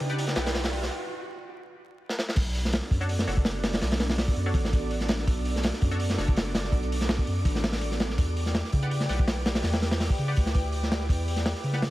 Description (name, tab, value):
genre	drum and bass, jungle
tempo	165 BPM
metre	4/4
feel	straight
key	B minor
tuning	A4 = 441 Hz
part	airy breathy pad	sustained chords	0.0-11.9 s	B3 to G5	-35 LUFS	right 1 dB	chorus
part	soft dub sub bass	bass	0.0-11.9 s	F#1 to C#3	-29 LUFS	equal	tube saturation
part	crunchy breakbeat drum kit	drums	0.0-11.9 s	crash cymbal, hi-hat, kick drum, snare drum	-27 LUFS	equal	high-pass filter on kick, high-pass filter on hats, high-pass filter on cymbals, high-pass filter on snare, high-pass filter on room
part	riser	sound effects	0.0-0.9 s	none	-38 LUFS	right 3 dB	none
part	band-passed chord stab	stabs	0.1-0.5, 3.0-6.4, 8.8-11.8 s	D4 to F#5	-39 LUFS	left 1 dB	chorus, dub echo
part	wind-like tuned noise texture	texture	2.8-11.9 s	D6	-43 LUFS	right 3 dB	built-in reverb
room	small room ambience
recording	vinyl crackle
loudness	-24 LUFS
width	side -17 dB against mid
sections	0.0-2.4 A section; 2.4-11.9 B section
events	build-up 0.0-2.4; riser 0.0-0.9; break 0.9-2.4; drum fill 2.1; drop 2.4-11.9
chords	0.0 Em7; 2.4 Bm7; 8.2 Em7